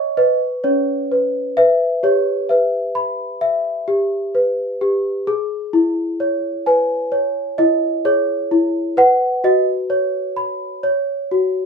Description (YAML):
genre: children's music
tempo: 65 BPM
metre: 4/4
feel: straight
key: unclear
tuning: A4 = 444 Hz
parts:
  - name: small celesta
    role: solo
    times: 0.0-11.7 s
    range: C#4 to C#6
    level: -16 LUFS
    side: equal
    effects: none
room: moderate small room reverb, RT60 0.5 s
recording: band playing live in one room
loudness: -16 LUFS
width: side -5 dB against mid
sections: 0.0-11.7 A section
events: none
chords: 0.0 Badd9; 1.6 Em; 5.3 C#m; 9.0 F#sus4; 10.8 F#5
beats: 0.64 | 1.56 2.48 3.41 4.33 | 5.26 6.19 7.12 8.04 | 8.97 9.91 10.85